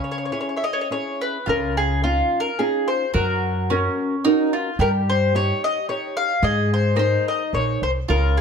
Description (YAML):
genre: italian folk, Italian serenade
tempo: 109 BPM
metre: 3/4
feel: straight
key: Db major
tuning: A4 = 440 Hz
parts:
  - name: mandolin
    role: melody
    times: 0.0-8.4 s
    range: F4 to F5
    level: -22 LUFS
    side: left 2 dB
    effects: none
  - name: bowl-back mandolin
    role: second line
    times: 0.0-8.4 s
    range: C#4 to Ab4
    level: -25 LUFS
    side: right 3 dB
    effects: none
  - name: nylon-string guitar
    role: accompaniment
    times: 0.0-8.4 s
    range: C#3 to Db5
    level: -28 LUFS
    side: left 4 dB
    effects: none
  - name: upright bass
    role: bass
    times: 1.5-8.4 s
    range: Bb1 to Ab2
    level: -22 LUFS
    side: equal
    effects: none
room: light reverb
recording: close, detailed microphones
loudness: -19 LUFS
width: side -6 dB against mid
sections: 0.0-1.5 A section; 1.5-8.4 B section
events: none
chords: 0.0 C#m; 1.5 Dbadd9; 3.2 Gb; 4.8 Eb7/G; 6.4 Abadd9